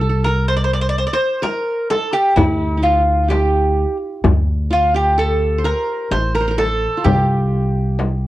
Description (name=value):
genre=Arabic maqam ensemble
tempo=128 BPM (eighths)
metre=10/8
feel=straight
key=unclear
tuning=A4 = 441 Hz
part: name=mandolin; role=melody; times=0.0-8.3 s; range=E4-50c to D5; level=-18 LUFS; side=right 1 dB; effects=none
part: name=qanun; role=second line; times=0.0-8.3 s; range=E4-50c to C5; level=-24 LUFS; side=right 1 dB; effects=none
part: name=upright bass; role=bass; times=0.0-8.3 s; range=A1 to D2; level=-18 LUFS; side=equal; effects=none
part: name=darbuka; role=percussion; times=1.4-8.2 s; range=none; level=-21 LUFS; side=left 2 dB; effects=none
part: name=frame drum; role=percussion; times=1.4-8.2 s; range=none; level=-22 LUFS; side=left 2 dB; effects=none
room=light reverb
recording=worn, warbling old tape, cassette tape, warbly pitch drift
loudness=-15 LUFS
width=side -15 dB against mid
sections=0.0-8.3 A section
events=none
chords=none